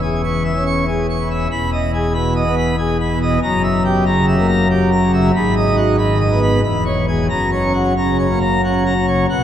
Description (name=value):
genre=classical, organ toccata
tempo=93 BPM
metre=3/4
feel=straight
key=unclear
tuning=A4 = 437 Hz
part: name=pipe organ, plenum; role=solo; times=0.0-9.4 s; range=E1 to C#6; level=-14 LUFS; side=equal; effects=none
room=wet cathedral reverb, RT60 6.2 s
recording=none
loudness=-14 LUFS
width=side -10 dB against mid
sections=0.0-9.3 A section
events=none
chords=0.0 C#m/E; 1.5 Emaj7; 3.4 F#7b9; 5.3 G#m7; 6.6 C#m7/E; 7.3 F#